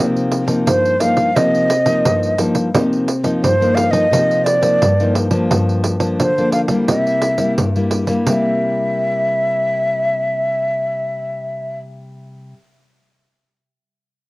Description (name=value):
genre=samba and choro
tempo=87 BPM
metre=4/4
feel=straight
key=unclear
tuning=A4 = 440 Hz
part: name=nylon-string guitar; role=accompaniment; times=0.0-12.6 s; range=G2 to E4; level=-18 LUFS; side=left 1 dB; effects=cassette tape
part: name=pandeiro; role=percussion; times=0.2-8.4 s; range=none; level=-20 LUFS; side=right 2 dB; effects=none
part: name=breathy mellow silver concert flute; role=melody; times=0.7-11.8 s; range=C5 to F5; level=-17 LUFS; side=equal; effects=cassette tape, plate reverb
room=moderate booth ambience, RT60 0.2 s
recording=home recording on cassette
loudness=-14 LUFS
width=side -20 dB against mid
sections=0.0-2.7 A section; 2.7-8.3 B section; 8.3-11.0 C section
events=none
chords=0.0 Cm7; 2.7 Cm11; 5.5 Gm7; 6.9 C7